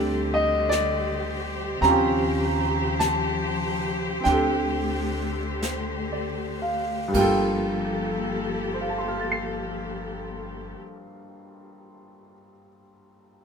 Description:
jazz; 37-56 BPM; 4/4; swing 67% on 8ths; G minor; A4 = 440 Hz
clear upright piano; accompaniment; 0.0-13.4 s; G2 to C7; -25 LUFS; right 1 dB
rich studio cello section; sustained chords; 0.0-10.7 s; Db3 to C5; -29 LUFS; left 3 dB
upright bass; bass; 0.0-10.7 s; G1 to Eb2; -32 LUFS; equal
jazz brush drum kit; drums; 0.7-7.9 s; brushed snare drum, crash cymbal, hi-hat, kick drum, snare drum; -36 LUFS; left 1 dB
moderate studio reverb, RT60 0.8 s; minimal, uncompressed stereo recording; -23 LUFS; side -6 dB against mid
0.0-7.1 A section; 7.1-13.4 B section
slowing down 0.0-7.1
0.0 D7sus4; 1.8 Eb13; 4.2 D7sus4; 7.1 Gm9

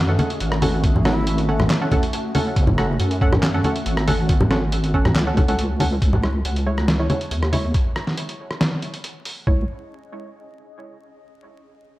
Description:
deep dubstep; 139 BPM; 4/4; half-time; C# minor; A4 = 440 Hz
breathy shakuhachi; melody; 0.0-1.4 s; E4; -34 LUFS; left 1 dB
granular cloud pad; sustained chords; 0.0-6.0, 9.5-9.7 s; A3 to F#4; -30 LUFS; equal; built-in reverb
deep soft wobble bass; bass; 0.0-9.7 s; F#1 to F#2; -21 LUFS; equal; chorus, tube saturation
filtered dub chord stab; stabs; 0.1-9.6 s; G#3 to F#5; -26 LUFS; right 1 dB; chorus, dub echo
trip hop sampler-style drum kit; drums; 0.2-9.3 s; handclaps, hi-hat, rim click, snare drum; -24 LUFS; equal
congas; percussion; 0.2-7.6 s; -23 LUFS; equal
electronic kick drum; drums; 0.8-9.6 s; -20 LUFS; equal
light reverb; dry, gritty hardware recording, vinyl crackle; -18 LUFS; side -17 dB against mid
0.0-6.0 A section; 6.0-9.5 B section; 9.5-11.2 C section
drop 0.0-6.0
0.0 F#m; 6.0 C#m; 9.5 C#5

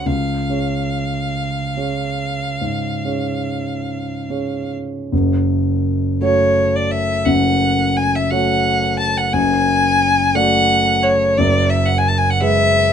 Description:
classical, romantic duo for violin and grand piano; 46-60 BPM (dotted quarters); 12/8; rubato; F# minor; A4 = 440 Hz
clear violin; melody; 0.0-12.9 s; C#5 to A5; -18 LUFS; left 1 dB
warm concert grand piano; accompaniment; 0.0-12.9 s; F#1 to D5; -18 LUFS; equal
light reverb; dark, warm production, nothing above 10.5 kHz; -15 LUFS; side -8 dB against mid
0.0-5.1 A section; 5.1-12.9 B section
0.1 C#; 5.1 F#m; 9.3 D/F#; 11.4 F#9sus4

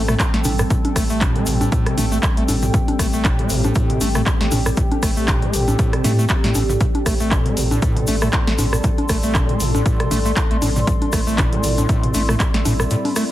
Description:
acid house; 118 BPM; 4/4; swing 56% on 16ths; A minor; A4 = 440 Hz
warbly tape-like pad; sustained chords; 0.0-13.3 s; G3 to A4; -27 LUFS; right 1 dB; chorus, built-in reverb, phaser, sidechain pumping
saturated sub bass; bass; 0.0-12.9 s; A1 to A2; -23 LUFS; equal; sidechain pumping
warbly tape-like pad; texture; 0.0-13.3 s; C4 to C6; -27 LUFS; left 1 dB; chorus, built-in reverb, sidechain pumping
overdriven acid bass; riff; 0.1-13.2 s; A2 to A3; -23 LUFS; equal; distortion, wide subtle chorus, sidechain pumping
punchy analog drum machine; drums; 0.1-13.3 s; congas, handclaps, hi-hat, rim click, snare drum, toms; -22 LUFS; equal
tube shaker; percussion; 0.1-13.3 s; -30 LUFS; left 2 dB
electronic kick drum; drums; 0.2-12.5 s; -19 LUFS; equal
light reverb, digital ambience; heavily compressed radio sound; -16 LUFS; side -14 dB against mid
0.0-13.3 A section
0.0 Am7

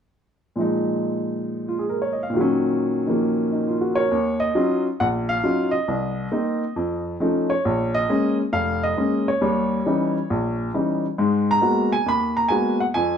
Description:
solo jazz; 136 BPM; 4/4; swing 66% on 8ths; Eb minor; A4 = 438 Hz
warm upright piano; solo; 0.6-13.2 s; F1 to Cb6; -20 LUFS; equal
moderate large studio reverb, RT60 1.1 s; band playing live in one room; -20 LUFS; side -8 dB against mid
0.6-4.1 A section; 4.1-13.2 B section
0.6 Bb7sus4; 2.3 Ebm7/Bb; 5.9 Cm7; 6.8 F7b13; 7.7 Bbm7; 9.4 Eb7b9; 11.2 Abm9

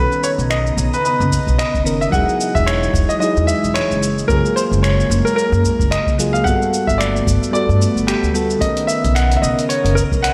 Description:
sunset chillout; 111 BPM; 4/4; swing 57% on 16ths; B major; A4 = 439 Hz
bright grand piano; melody; 0.0-10.3 s; G4 to F#5; -22 LUFS; equal; analog delay
soft electric-piano-like synth keys; accompaniment; 0.0-10.3 s; D#3 to B4; -25 LUFS; equal; chorus, vintage 12-bit sampler grit, tape echo
airy breathy pad; sustained chords; 0.0-10.3 s; C#3 to A#5; -26 LUFS; equal; chorus
upright bass; bass; 0.0-10.3 s; E1 to G2; -21 LUFS; equal
dusty soul sampler-style drum kit; drums; 0.1-10.3 s; finger snaps, hi-hat, shaker; -28 LUFS; equal
electronic kick drum; drums; 1.3-10.2 s; -23 LUFS; equal; overdrive
wet plate reverb, RT60 1.6 s; dreamy mix soaked in reverb; -17 LUFS; mono
0.0-10.3 A section
0.0 Bmaj9; 2.1 Emaj9; 4.0 F#maj9; 6.5 Gmaj9; 8.6 Bmaj9

